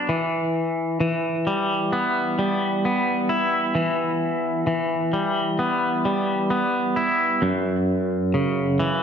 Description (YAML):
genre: rock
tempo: 66 BPM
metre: 4/4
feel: straight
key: E minor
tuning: A4 = 440 Hz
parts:
  - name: twangy electric guitar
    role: solo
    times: 0.0-9.0 s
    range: F#2 to E4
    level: -20 LUFS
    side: equal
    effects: harmonic tremolo, slapback echo, digital delay
room: wet lush hall reverb, RT60 1.6 s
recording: big arena sound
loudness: -20 LUFS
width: side -7 dB against mid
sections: 0.1-9.0 A section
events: none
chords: 0.1 Em; 7.4 F#7(no3)